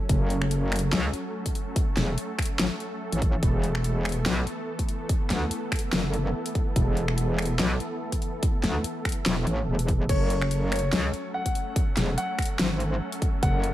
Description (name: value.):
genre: heavy wobble dubstep.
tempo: 144 BPM.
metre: 4/4.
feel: swing 55% on 16ths, half-time.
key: F# minor.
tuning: A4 = 440 Hz.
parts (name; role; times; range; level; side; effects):
supersaw chords; sustained chords; 0.0-13.7 s; E3 to A4; -33 LUFS; equal; sidechain pumping, low-pass filter.
metallic wobble bass; bass; 0.1-13.7 s; E1 to D2; -25 LUFS; equal; chorus, overdrive.
dubstep drum kit; drums; 0.1-13.7 s; crash cymbal, finger snaps, hi-hat, snare drum; -30 LUFS; left 2 dB; none.
electronic kick drum; drums; 0.1-13.5 s; none; -26 LUFS; equal; none.
metallic wobble bass; bass; 0.9-1.1, 4.3-4.5, 7.6-11.1 s; E1 to C#2; -26 LUFS; equal; chorus, overdrive.
dark baby grand piano; melody; 10.1-13.7 s; C#5 to F#5; -32 LUFS; left 2 dB; vintage 12-bit sampler grit, tape echo.
room: light reverb, digital ambience.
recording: none.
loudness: -24 LUFS.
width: side -14 dB against mid.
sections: 0.0-13.7 A section.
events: none.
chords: 0.0 F#m; 3.4 Esus4; 10.1 F#m.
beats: | 0.09 0.51 0.93 1.34 | 1.76 2.18 2.59 3.01 | 3.43 3.84 4.26 4.68 | 5.09 5.51 5.93 6.34 | 6.76 7.18 7.59 8.01 | 8.43 8.84 9.26 9.68 | 10.09 10.51 10.93 11.34 | 11.76 12.18 12.59 13.01 | 13.43.